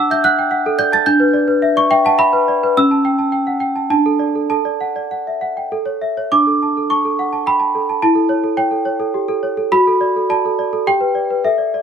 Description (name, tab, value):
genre	classical, lullaby for celesta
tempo	97-110 BPM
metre	3/4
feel	rubato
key	D major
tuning	A4 = 440 Hz
part	worn celesta	solo	0.0-11.8 s	C#4 to A6	-14 LUFS	right 1 dB	none
room	light reverb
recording	none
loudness	-14 LUFS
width	side -7 dB against mid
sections	0.0-6.3 A section; 6.3-11.8 B section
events	none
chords	0.0 D; 1.1 Em7/D; 2.8 A7/C#; 3.9 D5; 4.5 D/A; 5.7 A; 6.3 D; 8.0 A7/E; 9.7 D/F#; 10.9 G